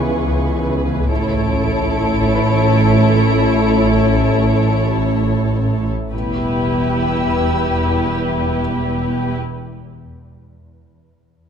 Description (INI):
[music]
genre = cinematic, suspense film score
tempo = 73 BPM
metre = 3/4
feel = straight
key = E dorian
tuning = A4 = 438 Hz
[part]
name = muted studio violin section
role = melody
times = 0.0-9.3 s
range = B4 to C#5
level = -25 LUFS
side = left 4 dB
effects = none
[part]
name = muted symphonic violin section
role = second line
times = 0.0-9.4 s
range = G4 to A4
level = -24 LUFS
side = left 1 dB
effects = none
[part]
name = muted symphonic viola section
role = accompaniment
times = 0.0-9.3 s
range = E3 to E4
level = -24 LUFS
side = right 1 dB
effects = none
[part]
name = warm French horn section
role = sustained chords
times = 0.0-9.4 s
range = E3 to C#4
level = -22 LUFS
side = left 4 dB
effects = none
[part]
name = muted symphonic cello section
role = bass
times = 0.0-9.3 s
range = E2 to C#3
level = -22 LUFS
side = right 3 dB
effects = none
[part]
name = muted symphonic double bass section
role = bass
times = 0.0-9.3 s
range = E1 to C#2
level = -21 LUFS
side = right 4 dB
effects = none
[part]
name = swarming drone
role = drone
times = 0.0-9.4 s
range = A1 to E2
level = -24 LUFS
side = left 1 dB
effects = built-in reverb
[part]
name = muted symphonic violin section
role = texture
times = 0.0-8.1 s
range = C#5 to D7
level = -30 LUFS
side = left 2 dB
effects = none
[part]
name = warm concert grand piano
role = texture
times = 0.0-6.2 s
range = B4 to B5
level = -34 LUFS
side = left 1 dB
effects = none
[sound]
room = moderate scoring stage reverb, RT60 2.0 s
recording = none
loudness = -14 LUFS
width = side -7 dB against mid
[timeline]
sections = 0.0-6.1 A section; 6.1-8.6 B section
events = none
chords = 0.0 C#m7; 1.1 A; 6.1 Em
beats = 0.29 | 1.10 1.92 2.74 | 3.58 4.44 5.29 | 6.13 6.95 7.77